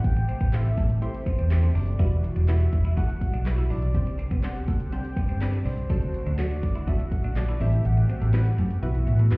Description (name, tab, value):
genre	dance-pop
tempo	123 BPM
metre	4/4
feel	straight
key	unclear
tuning	A4 = 440 Hz
part	soft octave-layered synth lead	melody	0.0-9.4 s	C5 to G5	-38 LUFS	left 1 dB	chorus, digital delay
part	wavetable chord stab	accompaniment	0.0-9.4 s	F#3 to C5	-36 LUFS	equal	sidechain pumping
part	soft supersaw	sustained chords	0.0-9.4 s	C3 to G4	-36 LUFS	equal	sidechain pumping
part	vintage muted fingered electric bass	bass	0.0-9.4 s	E1 to A2	-23 LUFS	equal	sidechain pumping
part	deep house drum kit	drums	0.0-9.4 s	handclaps, hi-hat, kick drum, snare drum	-26 LUFS	equal	none
part	twelve-string electric guitar	riff	0.2-9.3 s	A3 to F#4	-39 LUFS	right 2 dB	lush chorus
room	digital ambience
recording	heard muffled through a wall, stone room reverb, EQ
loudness	-22 LUFS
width	side -28 dB against mid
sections	0.0-9.4 A section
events	kick muted 7.8-9.4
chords	0.0 Am7; 2.0 Emadd9; 3.9 Csus2; 5.9 D; 7.6 Am7; 8.8 Bsus4